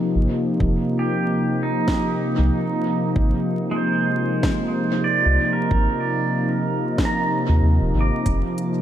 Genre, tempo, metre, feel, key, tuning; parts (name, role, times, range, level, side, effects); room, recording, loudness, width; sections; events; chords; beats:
ambient dub; 94 BPM; 4/4; swing 59% on 16ths; A4 = 443 Hz
warm analog pad; sustained chords; 0.0-8.8 s; C3 to G4; -22 LUFS; equal; chorus
soft dub sub bass; bass; 0.2-8.4 s; Eb1 to Eb2; -19 LUFS; equal
electronic kick drum; drums; 0.6-8.4 s; -24 LUFS; equal; overdrive
pedal steel guitar; arpeggios; 1.0-8.8 s; Ab3 to D6; -25 LUFS; right 4 dB; analog delay
organic electronic drum kit; drums; 1.9-8.7 s; hi-hat, snare drum; -32 LUFS; equal; overdrive, dub echo
moderate church reverb, RT60 3.1 s; dreamy mix soaked in reverb, vinyl crackle; -18 LUFS; side -10 dB against mid
0.0-8.8 A section
0.0 F9sus4; 3.2 Abmaj9; 8.3 F9sus4
| 0.61 1.24 1.88 2.52 | 3.16 3.80 4.44 5.07 | 5.71 6.35 6.99 7.63 | 8.27